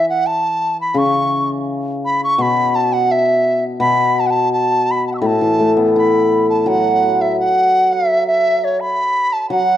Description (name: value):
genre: chinese traditional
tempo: 84 BPM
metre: 2/4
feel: straight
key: A gong mode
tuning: A4 = 441 Hz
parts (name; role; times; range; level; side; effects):
- large dizi; melody; 0.0-9.8 s; C#5 to E6; -15 LUFS; right 1 dB; none
- hammered dulcimer; accompaniment; 0.0-9.8 s; A2 to E4; -17 LUFS; left 2 dB; none
room: moderate recital hall reverb, RT60 1.4 s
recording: dark, warm production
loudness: -13 LUFS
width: side -11 dB against mid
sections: 0.0-6.7 A section; 6.7-9.8 B section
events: none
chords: none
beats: 0.25 | 0.97 1.69 | 2.40 3.11 | 3.82 4.52 | 5.23 5.94 | 6.67 7.39 | 8.10 8.80 | 9.51